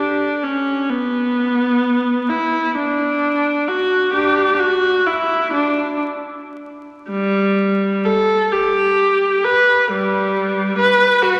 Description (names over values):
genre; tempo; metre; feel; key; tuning
classical, free, expressive piece for unaccompanied viola; 35-46 BPM (dotted quarters); 6/8; rubato; unclear; A4 = 440 Hz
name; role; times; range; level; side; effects
warm viola; solo; 0.0-11.4 s; G3 to B4; -17 LUFS; equal; none
room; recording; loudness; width
wet church reverb, RT60 3.2 s; vinyl crackle; -17 LUFS; mono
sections
0.0-11.4 A section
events
none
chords
none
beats
| 1.36 2.74 | 4.14 5.52 | 7.10 8.53 | 9.90 11.21